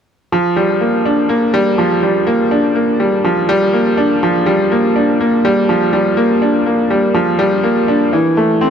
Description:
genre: electronica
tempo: 123 BPM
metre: 4/4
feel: straight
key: G dorian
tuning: A4 = 440 Hz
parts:
  - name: bright grand piano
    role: riff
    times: 0.3-8.7 s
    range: E3 to D4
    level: -11 LUFS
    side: equal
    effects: digital delay
room: moderate huge ambient reverb, RT60 4.8 s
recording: none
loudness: -12 LUFS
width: side -7 dB against mid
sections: 0.3-8.7 A section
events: none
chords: none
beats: | 0.32 0.81 1.30 1.78 | 2.27 2.76 3.25 3.73 | 4.22 4.71 5.20 5.69 | 6.17 6.66 7.15 7.64 | 8.12 8.61

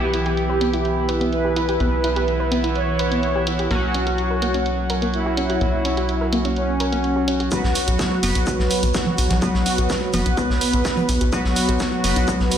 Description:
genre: melodic techno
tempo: 126 BPM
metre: 4/4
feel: straight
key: unclear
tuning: A4 = 439 Hz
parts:
  - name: analog synth brass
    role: melody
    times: 0.0-12.6 s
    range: F#3 to C#5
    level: -23 LUFS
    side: equal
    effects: chorus, sidechain pumping, tape echo
  - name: sync-sweep polysynth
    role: stabs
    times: 0.0-12.6 s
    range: E3 to B4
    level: -25 LUFS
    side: right 2 dB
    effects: chorus, phaser, sidechain pumping, tape echo
  - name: tight sequencer bass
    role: bass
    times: 0.0-12.5 s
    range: F#1 to B1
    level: -23 LUFS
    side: equal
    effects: sidechain pumping
  - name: deep dark ambient pad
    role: texture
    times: 0.0-12.6 s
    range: B3 to F#5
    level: -30 LUFS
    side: right 1 dB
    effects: chorus, built-in reverb, sidechain pumping
  - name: soft round pluck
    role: arpeggios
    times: 0.1-12.6 s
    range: A#3 to B4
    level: -28 LUFS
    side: equal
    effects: chorus, cassette tape, sidechain pumping, tape echo
  - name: electronic hi-hat and congas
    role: drums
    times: 0.1-12.6 s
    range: none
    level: -27 LUFS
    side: right 2 dB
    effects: sidechain pumping on hats, low-pass filter on hats, sidechain pumping on perc, low-pass filter on perc
  - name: electronic kick drum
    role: drums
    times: 7.5-12.4 s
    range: none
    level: -25 LUFS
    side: left 1 dB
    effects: overdrive, high-pass filter on kick
  - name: loose indie drum kit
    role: drums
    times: 7.5-12.6 s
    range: hi-hat, shaker, snare drum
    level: -31 LUFS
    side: left 1 dB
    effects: high-pass filter on hats, high-pass filter on snare, high-pass filter on perc, high-pass filter on room
room: light reverb, studio ambience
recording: played on a big sound system in a bare room, stone room reverb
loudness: -18 LUFS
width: side -9 dB against mid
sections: 0.0-7.5 A section; 7.5-12.6 B section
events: build-up 7.5-12.6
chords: 0.0 Em/B; 3.7 F#/B; 7.5 Bm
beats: 0.37 0.85 1.33 | 1.80 2.28 2.75 3.23 | 3.71 4.18 4.66 5.14 | 5.61 6.09 6.57 7.04 | 7.52 7.99 8.47 8.95 | 9.42 9.90 10.37 10.85 | 11.33 11.80 12.28

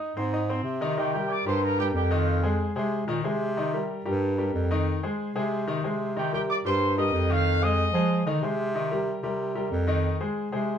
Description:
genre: latin, salsa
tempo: 185 BPM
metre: 4/4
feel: straight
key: C minor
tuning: A4 = 441 Hz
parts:
  - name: clear grand piano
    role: accompaniment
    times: 0.0-10.8 s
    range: Eb3 to Eb6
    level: -29 LUFS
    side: left 2 dB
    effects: none
  - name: warm bass clarinet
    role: bass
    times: 0.2-10.8 s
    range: F2 to F3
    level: -26 LUFS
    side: right 1 dB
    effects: none
  - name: mellow trumpet section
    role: melody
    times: 1.0-2.4, 6.2-8.3 s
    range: F4 to Eb6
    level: -28 LUFS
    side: equal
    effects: none
room: wet studio reverb, RT60 0.5 s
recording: heard from further back in the room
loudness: -24 LUFS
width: side -8 dB against mid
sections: 1.0-10.8 A section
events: none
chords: 0.0 Fm7 (rootless); 1.0 Cm7; 2.3 Fm7; 3.6 Cm7; 4.9 Fm7; 6.2 Cm7; 7.5 Fm7; 8.7 Cm7; 10.0 Fm7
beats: 0.00 0.33 0.65 | 0.97 1.30 1.62 1.95 | 2.27 2.59 2.92 3.24 | 3.57 3.89 4.21 4.54 | 4.86 5.19 5.51 5.83 | 6.16 6.48 6.81 7.13 | 7.46 7.78 8.10 8.43 | 8.75 9.07 9.40 9.72 | 10.04 10.37 10.69

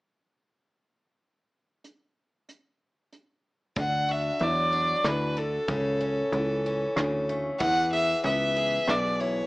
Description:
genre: honky-tonk and classic country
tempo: 94 BPM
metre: 3/4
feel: straight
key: D major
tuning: A4 = 441 Hz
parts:
  - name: soft brush drum kit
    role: drums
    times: 1.8-9.0 s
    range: hi-hat, kick drum, rim click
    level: -32 LUFS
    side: equal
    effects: none
  - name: clear fiddle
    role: melody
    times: 3.8-9.5 s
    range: A4 to F#5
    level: -26 LUFS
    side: equal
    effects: plate reverb
  - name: picked steel-string acoustic guitar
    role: accompaniment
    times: 3.8-9.5 s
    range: B2 to G#4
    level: -31 LUFS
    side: left 1 dB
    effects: none
  - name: plucky analog bass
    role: bass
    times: 3.8-9.4 s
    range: B1 to E2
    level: -31 LUFS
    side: equal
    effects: none
room: moderate studio reverb, RT60 0.6 s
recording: small speaker sound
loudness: -24 LUFS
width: side -21 dB against mid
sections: 1.8-3.8 A section; 3.8-9.5 B section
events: none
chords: 1.8 N.C.; 3.8 D; 5.7 A/C#; 7.6 E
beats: | 1.84 2.48 3.12 | 3.76 4.40 5.04 | 5.68 6.32 6.96 | 7.60 8.24 8.88

